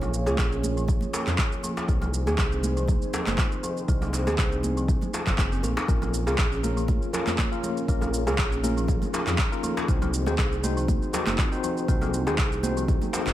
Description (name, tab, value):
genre	afro house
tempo	120 BPM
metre	4/4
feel	swing 54% on 16ths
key	unclear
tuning	A4 = 436 Hz
part	dark analog pad	sustained chords	0.0-13.3 s	Bb3 to Db5	-34 LUFS	equal	chorus, sidechain pumping
part	kalimba	arpeggios	0.0-13.3 s	F3 to Bb4	-32 LUFS	right 1 dB	vintage 12-bit sampler grit, sidechain pumping, dub echo
part	smooth synth bass	bass	0.0-13.3 s	Gb1 to F2	-28 LUFS	equal	tube saturation, sidechain pumping
part	electronic shaker and handclaps	drums	0.0-13.3 s	none	-32 LUFS	right 1 dB	overdrive, small room ambience
part	congas	percussion	0.0-13.3 s	none	-34 LUFS	right 4 dB	none
part	djembe	percussion	0.0-13.3 s	none	-35 LUFS	left 1 dB	none
part	electronic kick drum	drums	0.4-13.0 s	none	-25 LUFS	equal	small room ambience
part	bright tine electric piano	stabs	5.9-13.3 s	Bb3 to C5	-31 LUFS	left 3 dB	medium stereo tremolo, sidechain pumping, dub echo
room	little or no reverb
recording	none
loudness	-23 LUFS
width	side -13 dB against mid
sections	0.0-13.3 A section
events	none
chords	0.0 Bbm; 1.9 Cm; 5.9 Bbm; 9.9 Cdim